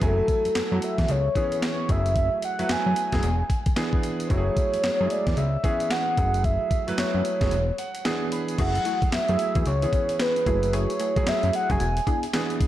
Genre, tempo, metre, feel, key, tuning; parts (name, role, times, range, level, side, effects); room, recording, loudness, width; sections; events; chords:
R&B, new jack swing; 112 BPM; 4/4; swing 62% on 16ths; F# minor; A4 = 440 Hz
mellow horn-like synth lead; melody; 0.0-12.2 s; A4 to G#5; -26 LUFS; equal; chorus
clear grand piano; accompaniment; 0.0-12.7 s; E3 to B5; -30 LUFS; right 2 dB
fat analog bass; bass; 0.0-12.0 s; E1 to F#2; -25 LUFS; equal
boom bap sampler-style drum kit; drums; 0.0-12.7 s; crash cymbal, handclaps, hi-hat, kick drum, snare drum; -27 LUFS; equal
funky polysynth comp; stabs; 8.6-12.3 s; A3 to G#4; -34 LUFS; left 3 dB; chorus
light reverb, digital ambience; dark, warm production; -22 LUFS; side -13 dB against mid
0.0-8.6 A section; 8.6-12.7 B section
break 7.5-8.6; grand piano fill 7.5-8.6
0.0 F#m9; 1.1 C#m7; 1.9 F#m9; 3.2 E7; 4.3 F#m9; 5.4 C#m7; 6.2 F#m9; 7.5 E7; 8.6 F#m9; 9.7 C#m7; 10.5 F#m9; 11.8 E7